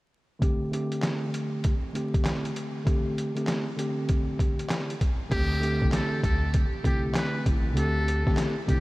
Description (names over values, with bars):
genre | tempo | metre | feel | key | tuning
hip hop, boom-bap hip-hop | 98 BPM | 4/4 | swing 63% on 16ths | unclear | A4 = 440 Hz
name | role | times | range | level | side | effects
mellow tine electric piano | accompaniment | 0.4-8.8 s | D3 to G4 | -29 LUFS | equal | slow stereo tremolo, cassette tape, high-pass filter, low-pass filter
trip hop sampler-style drum kit | drums | 0.4-8.8 s | crash cymbal, handclaps, hi-hat, kick drum, snare drum | -27 LUFS | equal | overdrive
trumpet with metal mute | melody | 5.3-8.8 s | G4 to B4 | -32 LUFS | equal | high-pass filter, low-pass filter, diffuse ambient delay
upright bass | bass | 5.3-8.8 s | A1 to D2 | -28 LUFS | equal | none
room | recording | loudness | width
light reverb | vinyl crackle | -24 LUFS | side -20 dB against mid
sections
0.4-5.3 A section; 5.3-8.8 B section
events
none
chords
0.4 D7sus4